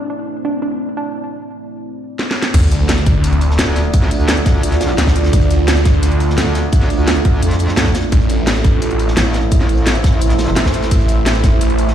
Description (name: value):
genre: dark technical drum and bass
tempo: 172 BPM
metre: 4/4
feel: straight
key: D minor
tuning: A4 = 439 Hz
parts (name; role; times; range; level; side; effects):
- deep dark ambient pad; sustained chords; 0.0-11.9 s; A3 to E5; -20 LUFS; right 2 dB; chorus, built-in reverb, vintage 12-bit sampler grit, sidechain pumping
- analog pluck; arpeggios; 0.1-1.0 s; D4; -24 LUFS; right 3 dB; chorus, vintage 12-bit sampler grit, sidechain pumping, ping-pong delay
- drum and bass drum kit; drums; 2.2-11.9 s; crash cymbal, hi-hat, snare drum; -20 LUFS; equal; none
- snarling distorted saw bass; bass; 2.5-11.9 s; A1 to D2; -15 LUFS; equal; tube saturation
- crunchy breakbeat drum kit; drums; 2.5-11.9 s; hi-hat, snare drum; -28 LUFS; equal; high-pass filter on hats, high-pass filter on snare, high-pass filter on room
- electronic kick drum; drums; 2.5-11.5 s; none; -13 LUFS; equal; none
- sub drop; sound effects; 2.5-3.9 s; none; -20 LUFS; equal; none
- metallic wobble bass; bass; 3.6-10.6 s; A1 to F2; -16 LUFS; equal; distortion, chorus
room: little or no reverb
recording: played on a big sound system in a bare room, large studio reverb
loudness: -12 LUFS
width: side -10 dB against mid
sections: 0.0-2.5 A section; 2.5-11.9 B section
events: drum fill 2.2-2.5; drop 2.5-11.9; impact 2.5-3.9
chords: 0.0 Am; 2.5 Dm; 8.1 Am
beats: 0.10 0.45 0.80 | 1.15 1.49 1.84 2.19 | 2.54 2.89 3.24 3.59 | 3.94 4.29 4.63 4.98 | 5.33 5.68 6.03 6.38 | 6.73 7.08 7.42 7.77 | 8.12 8.47 8.82 9.17 | 9.52 9.87 10.21 10.56 | 10.91 11.26 11.61